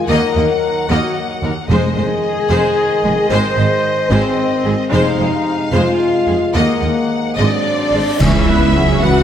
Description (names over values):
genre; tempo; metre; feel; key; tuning
cinematic, epic orchestral film score; 74 BPM (dotted quarters); 6/8; straight; F phrygian; A4 = 440 Hz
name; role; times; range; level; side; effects
warm symphonic violin section; melody; 0.0-9.2 s; D5 to Gb5; -26 LUFS; left 3 dB; none
mellow trombone section; sustained chords; 0.0-8.8 s; C3 to B3; -25 LUFS; right 1 dB; none
warm French horn section; sustained chords; 0.0-9.2 s; Bb3 to C5; -17 LUFS; left 3 dB; none
clear symphonic violin section; second line; 0.1-9.2 s; Ab4 to F#5; -23 LUFS; left 2 dB; none
rich symphonic viola section; accompaniment; 0.1-9.2 s; Ab3 to B4; -22 LUFS; right 1 dB; none
dark tuba; bass; 0.1-9.2 s; F1 to Eb2; -23 LUFS; right 3 dB; none
rich symphonic cello section; bass; 0.1-9.2 s; Eb2 to G#3; -23 LUFS; right 2 dB; none
rich symphonic double bass section; bass; 0.1-9.2 s; F1 to Eb2; -22 LUFS; right 2 dB; none
timpani; percussion; 1.7-2.5, 4.9-5.7, 8.2-9.0 s; F2 to C#3; -23 LUFS; left 1 dB; none
cymbal swell, clash cymbals and concert bass drum; percussion; 4.9-9.2 s; none; -24 LUFS; equal; none
reverse cymbal and impact; sound effects; 7.8-9.2 s; none; -27 LUFS; equal; none
mellow hollow flute section; second line; 7.4-9.2 s; D5 to F#5; -22 LUFS; right 3 dB; none
room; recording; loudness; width
wet scoring stage reverb, RT60 2.1 s; none; -13 LUFS; side -9 dB against mid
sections
0.0-8.2 A section; 8.2-9.2 B section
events
reverse cymbal 7.8-8.2; band accent 8.2-8.8; impact 8.2-9.2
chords
0.1 Ebm; 1.7 Fm7; 3.3 Ab; 4.9 Fm7; 6.6 Ebm; 7.4 Ab7; 8.2 C#m7